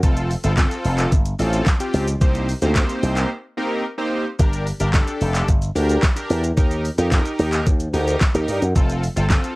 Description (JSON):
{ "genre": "dance-pop", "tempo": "110 BPM", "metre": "4/4", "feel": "straight", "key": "G minor", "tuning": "A4 = 439 Hz", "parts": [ { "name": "big bright polysynth", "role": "accompaniment", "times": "0.0-9.6 s", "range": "Bb3 to C5", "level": "-24 LUFS", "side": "equal", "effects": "chorus, sidechain pumping" }, { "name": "slap bass with an envelope filter", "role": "bass", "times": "0.0-9.4 s", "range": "F1 to G2", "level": "-20 LUFS", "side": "equal", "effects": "sidechain pumping" }, { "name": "smooth R&B drum kit", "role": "drums", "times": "0.0-9.6 s", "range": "handclaps, hi-hat, kick drum, shaker, snare drum", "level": "-19 LUFS", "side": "equal", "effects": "cassette tape" } ], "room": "little or no reverb", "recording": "home recording on cassette", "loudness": "-17 LUFS", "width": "side -23 dB against mid", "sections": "0.0-4.4 A section; 4.4-9.6 A section", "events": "drop 0.0-4.4, 4.4-9.6; break 3.3-4.4", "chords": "0.0 F; 2.2 Cm7; 4.4 Gm; 6.6 Eb; 8.8 F" }